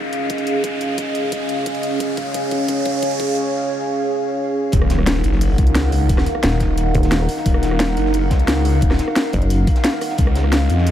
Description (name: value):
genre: dark technical drum and bass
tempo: 176 BPM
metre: 4/4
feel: straight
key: Eb minor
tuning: A4 = 440 Hz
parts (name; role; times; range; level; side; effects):
- dark analog pad; sustained chords; 0.0-10.9 s; Db4 to Gb5; -21 LUFS; right 1 dB; chorus, phaser, sidechain pumping
- riser and impact; sound effects; 0.0-6.1 s; none; -26 LUFS; equal; none
- drum and bass drum kit; drums; 0.1-10.9 s; hi-hat, rim click, snare drum; -23 LUFS; equal; overdrive
- electronic kick drum; drums; 0.3-10.3 s; none; -19 LUFS; equal; overdrive, high-pass filter on kick, high-pass filter on room
- phased detuned saw bass; bass; 4.7-10.9 s; Eb1 to F2; -17 LUFS; equal; phaser, overdrive, sidechain pumping
- crunchy breakbeat drum kit; drums; 4.7-10.9 s; hi-hat, snare drum; -35 LUFS; equal; none
- pulsing pluck wobble bass; bass; 6.9-7.3, 9.3-9.7 s; Eb1 to Gb1; -17 LUFS; equal; chorus
room: moderate huge ambient reverb, RT60 8.2 s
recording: dreamy mix soaked in reverb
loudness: -16 LUFS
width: side -11 dB against mid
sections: 0.0-4.7 A section; 4.7-10.9 B section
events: build-up 0.0-4.7; drum fill 0.0-3.4; riser 0.0-3.4; drop 4.7-10.9; impact 4.7-6.1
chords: 0.0 Db; 4.7 Ebm; 10.2 Db